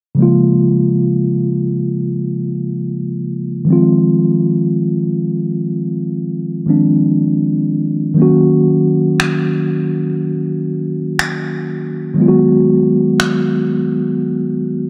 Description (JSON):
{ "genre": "contemporary R&B", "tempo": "60 BPM", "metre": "4/4", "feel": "swing 58% on 16ths", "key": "Bb minor", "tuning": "A4 = 440 Hz", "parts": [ { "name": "mellow tine electric piano", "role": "accompaniment", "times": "0.1-14.9 s", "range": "Db3 to Gb4", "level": "-15 LUFS", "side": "equal", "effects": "none" }, { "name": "electronic finger snaps", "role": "drums", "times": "9.2-13.5 s", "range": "none", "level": "-22 LUFS", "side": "equal", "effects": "none" } ], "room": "light reverb", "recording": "dark, warm production", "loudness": "-15 LUFS", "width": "mono", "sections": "0.2-14.9 A section", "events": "break 14.2-14.9", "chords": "0.2 Bbm7; 3.7 Fm7; 8.2 Ebm7; 12.2 Abm7" }